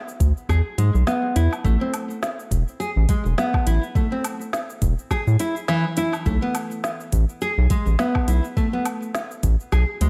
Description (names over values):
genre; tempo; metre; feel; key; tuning
organic downtempo; 104 BPM; 4/4; swing 57% on 16ths; A harmonic minor; A4 = 440 Hz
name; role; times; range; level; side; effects
organic electronic drum kit; drums; 0.1-10.1 s; cabasa, hi-hat, snare drum, woodblock; -32 LUFS; equal; overdrive, studio ambience
round analog bass; bass; 0.2-10.1 s; E1 to A2; -20 LUFS; equal; none
electronic kick drum; drums; 0.2-9.9 s; none; -25 LUFS; equal; overdrive, studio ambience
nylon-string guitar; arpeggios; 0.5-10.1 s; E3 to G#4; -27 LUFS; equal; delay
room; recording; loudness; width
light reverb; none; -22 LUFS; mono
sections
0.0-10.1 A section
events
none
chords
0.0 E; 1.6 A5; 6.3 N.C.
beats
0.49 1.07 | 1.65 2.22 2.80 3.38 | 3.95 4.53 5.11 5.68 | 6.26 6.84 7.42 7.99 | 8.57 9.15 9.72